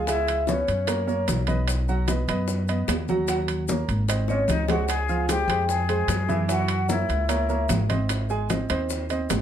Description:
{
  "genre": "Afro-Cuban jazz",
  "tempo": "150 BPM",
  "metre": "4/4",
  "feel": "straight",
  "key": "unclear",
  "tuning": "A4 = 444 Hz",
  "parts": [
    { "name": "vibraphone with medium mallets", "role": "melody", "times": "0.0-1.2, 4.3-7.7 s", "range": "Db5 to Ab5", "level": "-28 LUFS", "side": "left 1 dB", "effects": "analog delay" },
    { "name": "breathy bright jazz flute", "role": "second line", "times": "0.0-1.2, 4.3-7.7 s", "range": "Db4 to Ab4", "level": "-32 LUFS", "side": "left 6 dB", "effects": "none" },
    { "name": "warm baby grand piano", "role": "accompaniment", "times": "0.0-9.4 s", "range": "Fb3 to Ab5", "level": "-28 LUFS", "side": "right 3 dB", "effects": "none" },
    { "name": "upright bass", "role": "bass", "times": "0.0-9.4 s", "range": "Ab1 to Gb2", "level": "-26 LUFS", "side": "equal", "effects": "none" },
    { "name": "bongos", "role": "percussion", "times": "0.1-9.4 s", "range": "none", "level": "-34 LUFS", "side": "left 6 dB", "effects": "none" },
    { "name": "congas", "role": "percussion", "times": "0.1-9.4 s", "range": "none", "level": "-32 LUFS", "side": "left 1 dB", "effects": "none" },
    { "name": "maracas", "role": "percussion", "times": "0.1-9.4 s", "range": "none", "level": "-38 LUFS", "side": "left 7 dB", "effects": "none" },
    { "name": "timbales", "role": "percussion", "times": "0.1-9.4 s", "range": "none", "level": "-31 LUFS", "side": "right 10 dB", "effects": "none" }
  ],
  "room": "light reverb",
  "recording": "none",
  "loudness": "-22 LUFS",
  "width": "side -9 dB against mid",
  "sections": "0.0-9.4 A section",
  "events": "drum fill 4.3-4.9",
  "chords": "0.1 Dbm7; 0.9 Gb; 1.7 B; 3.3 Ebm7; 4.1 Ab; 4.9 Dbmaj7; 6.5 Gb9; 8.1 Ab"
}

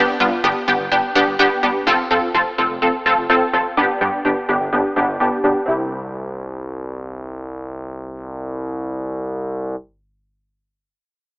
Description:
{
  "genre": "synth-pop",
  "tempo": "126 BPM",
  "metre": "4/4",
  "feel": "straight",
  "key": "C major",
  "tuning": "A4 = 439 Hz",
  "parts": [
    { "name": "wide unison pluck", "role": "accompaniment", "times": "0.0-9.8 s", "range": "B3 to A4", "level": "-15 LUFS", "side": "equal", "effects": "ensemble chorus, low-pass filter" },
    { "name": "smooth synth bass", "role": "bass", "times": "0.0-9.8 s", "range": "F1 to G2", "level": "-27 LUFS", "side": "equal", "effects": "none" }
  ],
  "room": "wet plate reverb, RT60 2.9 s",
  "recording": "AM radio sound, faint mains hum",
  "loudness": "-16 LUFS",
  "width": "side -26 dB against mid",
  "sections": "0.0-5.7 A section; 5.7-9.5 B section",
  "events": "filter sweep on synth pluck 0.0-5.7",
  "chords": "0.0 G; 1.9 F; 3.8 G; 5.7 C"
}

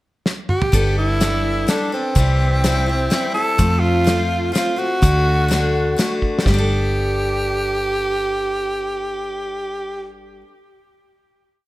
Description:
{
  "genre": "folk rock and heartland rock",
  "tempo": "126 BPM",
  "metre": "3/4",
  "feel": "straight",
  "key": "G major",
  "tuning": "A4 = 440 Hz",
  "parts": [
    { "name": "damped 70s drum kit", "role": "drums", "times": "0.3-6.6 s", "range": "hi-hat, kick drum, snare drum, toms", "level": "-20 LUFS", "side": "equal", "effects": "none" },
    { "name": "growling tenor saxophone", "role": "melody", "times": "0.5-10.1 s", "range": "C4 to A4", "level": "-21 LUFS", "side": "right 1 dB", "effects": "tape echo" },
    { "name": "picked steel-string acoustic guitar", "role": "accompaniment", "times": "0.7-10.6 s", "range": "F2 to A4", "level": "-24 LUFS", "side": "left 2 dB", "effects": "none" },
    { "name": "hollow-body short-scale fingered electric bass", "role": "bass", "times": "0.7-10.4 s", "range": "G1 to F2", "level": "-19 LUFS", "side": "equal", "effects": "none" }
  ],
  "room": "moderate plate reverb, RT60 1.0 s, small room ambience",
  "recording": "dreamy mix soaked in reverb",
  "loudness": "-16 LUFS",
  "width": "side -17 dB against mid",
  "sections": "0.0-0.7 pickup bar; 0.7-6.5 verse; 6.5-9.3 final chord",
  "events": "drum fill 0.2-0.7, 6.2",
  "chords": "0.0 N.C.; 0.7 Gadd9; 2.2 C; 3.6 F; 5.0 D; 6.5 Gadd9"
}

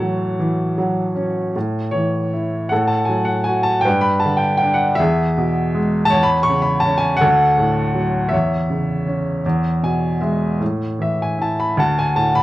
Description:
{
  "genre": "classical, lyrical solo piano",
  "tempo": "52 BPM (dotted quarters)",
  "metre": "6/8",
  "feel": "rubato",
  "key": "A major",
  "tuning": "A4 = 440 Hz",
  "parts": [
    { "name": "clear baby grand piano", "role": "solo", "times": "0.0-12.4 s", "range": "D2 to C#6", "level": "-16 LUFS", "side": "equal", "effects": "none" }
  ],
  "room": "light reverb",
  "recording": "worn, warbling old tape, cassette tape, warbly pitch drift",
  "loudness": "-16 LUFS",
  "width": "side -16 dB against mid",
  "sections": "0.0-1.5 A section; 1.5-12.4 B section",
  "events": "grand piano fill 9.4-10.6",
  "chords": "0.0 A6; 1.5 A; 2.7 F#madd9/A; 3.9 G; 5.0 E; 6.1 E6; 7.2 D; 8.3 C#m/E; 9.4 E; 10.6 A5; 11.8 D"
}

